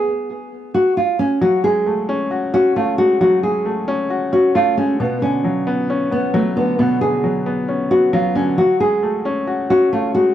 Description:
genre	hip hop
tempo	134 BPM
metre	4/4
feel	half-time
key	F# harmonic minor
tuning	A4 = 440 Hz
part	nylon-string guitar	melody	0.0-10.3 s	A3 to G#4	-16 LUFS	equal	tape echo
part	dark grand piano	accompaniment	1.4-10.3 s	B2 to F#4	-20 LUFS	left 2 dB	none
room	light reverb, studio reverb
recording	dry, gritty hardware recording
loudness	-15 LUFS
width	side -11 dB against mid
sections	0.0-1.4 A section; 1.4-10.3 B section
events	none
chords	0.0 N.C.; 1.4 F#madd9; 5.0 Bmadd9; 8.6 F#madd9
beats	0.07 0.52 0.97 | 1.42 1.86 2.31 2.76 | 3.21 3.65 4.10 4.55 | 5.00 5.45 5.89 6.34 | 6.79 7.24 7.68 8.13 | 8.58 9.03 9.47 9.92

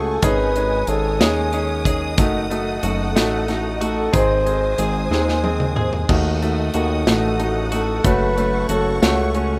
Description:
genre	six-eight pop ballad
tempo	61 BPM (dotted quarters)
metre	6/8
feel	straight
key	unclear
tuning	A4 = 440 Hz
part	breathy flugelhorn	melody	0.0-9.6 s	F#4 to B#4	-26 LUFS	equal	digital delay
part	warm grand piano	accompaniment	0.0-9.6 s	A3 to G#4	-26 LUFS	equal	none
part	warm symphonic string section	sustained chords	0.0-9.6 s	A3 to D#6	-30 LUFS	equal	none
part	direct-recorded clean electric guitar	arpeggios	0.0-9.6 s	D#3 to G#4	-32 LUFS	equal	none
part	fat analog bass	bass	0.0-9.6 s	F#1 to D#2	-25 LUFS	equal	none
part	modern studio drum kit	drums	0.2-9.5 s	crash cymbal, hi-hat, kick drum, snare drum, toms	-23 LUFS	equal	none
room	moderate studio ambience, RT60 0.5 s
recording	rough home demo mix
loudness	-19 LUFS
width	mono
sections	0.0-9.6 A section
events	drum fill 5.1-6.1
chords	0.2 G#sus4; 2.2 D#dim/F#; 4.1 G#; 6.1 D#dim; 8.0 F#m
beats	| 0.23 1.20 | 2.18 3.16 | 4.14 5.11 | 6.09 7.07 | 8.05 9.02

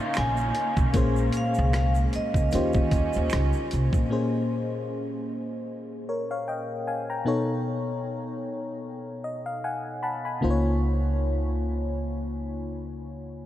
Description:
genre	R&B, neo-soul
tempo	76 BPM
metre	4/4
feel	swing 56% on 16ths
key	Bb dorian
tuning	A4 = 440 Hz
part	vibraphone with hard mallets	melody	0.0-3.7 s	Eb5 to Ab5	-32 LUFS	right 1 dB	analog delay
part	FM electric piano	accompaniment	0.0-13.5 s	Bb2 to B5	-28 LUFS	left 2 dB	chorus
part	muted studio string section	sustained chords	0.0-4.1 s	Eb3 to F4	-35 LUFS	right 1 dB	none
part	finger snaps and egg shaker	percussion	0.1-4.1 s	none	-42 LUFS	right 7 dB	none
part	upright bass	bass	0.2-4.1, 10.4-13.5 s	Bb1 to Eb3	-26 LUFS	equal	none
part	boom bap sampler-style drum kit	drums	0.2-4.1 s	hi-hat, kick drum, rim click	-27 LUFS	equal	none
room	moderate huge ambient reverb, RT60 7.4 s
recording	dreamy mix soaked in reverb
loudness	-24 LUFS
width	side -13 dB against mid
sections	0.0-4.1 A section; 4.1-13.5 B section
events	FM electric piano fill 8.8-10.4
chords	0.0 Db69; 0.9 Bbm7; 2.5 Eb13; 4.1 Bbm9; 7.3 B9; 10.4 Db69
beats	0.15 | 0.94 1.73 2.52 3.31 | 4.10 4.89 5.68 6.47 | 7.26 8.05 8.84 9.63 | 10.42 11.21 11.99 12.78

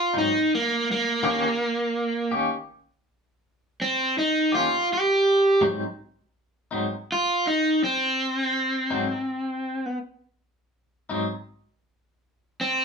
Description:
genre	blues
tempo	55 BPM (dotted quarters)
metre	12/8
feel	straight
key	unclear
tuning	A4 = 441 Hz
part	raw garage guitar	melody	0.0-12.8 s	Bb3 to G4	-21 LUFS	right 1 dB	overdrive
part	clean electric guitar	accompaniment	0.1-11.3 s	Ab2 to G4	-26 LUFS	left 2 dB	tremolo
room	wet small room reverb, RT60 0.6 s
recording	band playing live in one room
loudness	-22 LUFS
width	side -5 dB against mid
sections	0.0-12.8 A section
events	overdriven electric guitar solo 0.0-12.8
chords	0.0 Ab7; 1.2 Eb7; 5.6 Ab7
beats	0.14 | 1.23 2.33 3.42 4.52 | 5.61 6.71 7.81 8.90 | 10.00 11.10 12.20

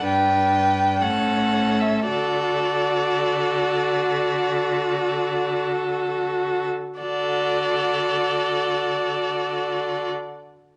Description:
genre	classical, slow romantic movement for string quartet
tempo	44-65 BPM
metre	4/4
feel	rubato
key	D major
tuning	A4 = 436 Hz
part	clear violin	melody	0.0-10.1 s	D5 to G5	-26 LUFS	equal	none
part	clear violin	second line	0.0-10.1 s	A4 to B4	-31 LUFS	equal	none
part	rich viola	accompaniment	0.0-10.1 s	C#4 to F#4	-27 LUFS	equal	none
part	clear cello	bass	0.0-10.1 s	G2 to D3	-31 LUFS	equal	none
room	moderate large studio reverb, RT60 1.0 s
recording	nothing above 10.5 kHz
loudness	-22 LUFS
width	mono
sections	0.0-7.0 A section; 7.0-10.8 B section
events	slowing down 0.0-7.0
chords	0.0 G; 1.0 A; 2.1 D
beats	0.04 1.01 | 2.08 3.23 4.43 5.68 | 7.01 8.32 9.59

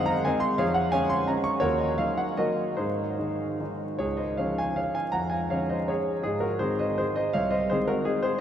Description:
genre	classical, romantic triple-time dance for piano with dotted rhythms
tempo	139-189 BPM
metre	3/4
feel	rubato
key	Db major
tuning	A4 = 435 Hz
part	warm concert grand piano	solo	0.0-8.4 s	C2 to Db6	-24 LUFS	equal	none
room	wet huge ambient reverb, RT60 8.5 s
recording	in a vast, echoing space, vinyl crackle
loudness	-24 LUFS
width	side -9 dB against mid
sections	0.0-4.0 A section; 4.0-8.4 A section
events	none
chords	0.0 Ab7/Gb; 0.6 Db/F; 1.6 Ebm; 2.8 Ab; 4.0 Db; 5.1 Db/F; 6.2 Ab; 7.3 Ab/C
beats	0.26 | 0.59 0.93 1.29 | 1.62 1.99 2.39 | 2.78 3.19 3.60 | 4.00 4.39 4.78 | 5.14 5.51 5.89 | 6.24 6.61 6.99 | 7.34 7.71 8.07 | 8.40

